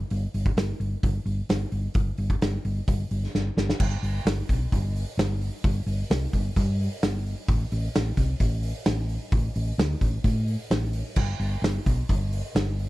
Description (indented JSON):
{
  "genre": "folk rock and heartland rock",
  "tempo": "130 BPM",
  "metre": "4/4",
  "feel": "straight",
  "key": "unclear",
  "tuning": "A4 = 439 Hz",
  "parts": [
    { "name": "hollow-body short-scale fingered electric bass", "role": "bass", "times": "0.1-12.9 s", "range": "G1 to A2", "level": "-26 LUFS", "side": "equal", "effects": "none" },
    { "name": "loose indie drum kit", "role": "drums", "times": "0.1-12.9 s", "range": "crash cymbal, hi-hat, kick drum, snare drum", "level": "-26 LUFS", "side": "equal", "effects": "none" }
  ],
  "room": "little or no reverb",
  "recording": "none",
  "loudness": "-23 LUFS",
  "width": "side -18 dB against mid",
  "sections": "0.0-3.8 A section; 3.8-12.9 B section",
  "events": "drum fill 3.3-3.8",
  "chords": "none",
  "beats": "| 0.10 0.56 1.03 1.49 | 1.95 2.41 2.87 3.33 | 3.79 4.25 4.71 5.17 | 5.63 6.10 6.56 7.02 | 7.48 7.94 8.40 8.86 | 9.32 9.78 10.24 10.70 | 11.16 11.62 12.09 12.55"
}